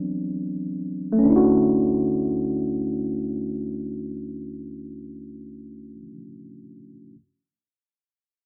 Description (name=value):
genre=R&B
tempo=35 BPM (dotted quarters)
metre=6/8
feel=straight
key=D major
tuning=A4 = 441 Hz
part: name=tine electric piano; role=accompaniment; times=0.0-7.2 s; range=E3 to F#4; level=-25 LUFS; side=equal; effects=none
part: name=deep dub fingered electric bass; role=bass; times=1.2-6.1 s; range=D2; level=-39 LUFS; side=equal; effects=none
room=moderate studio reverb, RT60 0.6 s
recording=rough home demo mix, low-pass filter, small speaker sound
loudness=-23 LUFS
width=mono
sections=0.0-1.2 A section; 1.2-4.6 B section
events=slowing down 0.0-1.2; tine electric piano solo 0.0-1.2; filter sweep 0.0-1.2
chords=0.0 Cmaj9#11; 1.2 Dmaj9